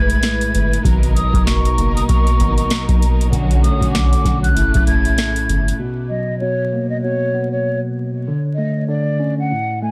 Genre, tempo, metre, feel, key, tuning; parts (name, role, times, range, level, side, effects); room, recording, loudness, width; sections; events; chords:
hip hop, boom-bap hip-hop; 97 BPM; 4/4; swing 59% on 16ths; A4 = 440 Hz
breathy mellow silver concert flute; melody; 0.0-9.9 s; C#5 to G#6; -25 LUFS; equal; high-pass filter, low-pass filter
mellow tine electric piano; accompaniment; 0.0-9.9 s; A2 to C#4; -24 LUFS; equal; cassette tape, high-pass filter, low-pass filter
warm studio string section; stabs; 0.0-5.8 s; C#3 to B4; -27 LUFS; equal; high-pass filter, low-pass filter, plate reverb, tape echo
soft dub sub bass; bass; 0.0-5.7 s; F#1 to B1; -22 LUFS; equal
booming analog drum machine; drums; 0.1-5.8 s; hi-hat, kick drum, snare drum; -19 LUFS; equal
light reverb; dense, heavily limited modern master, vinyl crackle; -17 LUFS; mono
0.0-5.8 A section; 5.8-9.9 B section
0.0 F#m9; 0.8 G#m9; 3.3 Bm9; 4.6 F#m9; 5.8 Bmaj7sus2; 8.3 Dmaj7(no3)